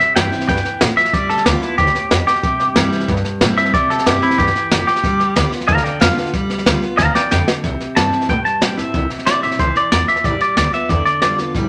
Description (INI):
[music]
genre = rockabilly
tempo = 185 BPM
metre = 4/4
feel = straight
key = C major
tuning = A4 = 440 Hz
[part]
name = twangy electric guitar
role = melody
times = 0.0-11.4 s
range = E4 to Bb5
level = -19 LUFS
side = equal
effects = spring reverb
[part]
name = picked steel-string acoustic guitar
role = accompaniment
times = 0.0-11.7 s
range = G2 to F4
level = -25 LUFS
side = equal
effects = none
[part]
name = upright bass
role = bass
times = 0.0-11.7 s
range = F#1 to A2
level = -25 LUFS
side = equal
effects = none
[part]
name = jazz brush drum kit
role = drums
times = 0.0-11.6 s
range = hi-hat, kick drum, snare drum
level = -21 LUFS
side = equal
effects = none
[sound]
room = moderate club reverb, RT60 0.8 s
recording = none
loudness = -16 LUFS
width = mono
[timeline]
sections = 0.0-7.6 A section; 7.6-11.7 B section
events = drum fill 7.0-7.6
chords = 0.0 C; 1.1 G7; 2.4 C; 5.0 G7; 7.6 C; 10.2 G7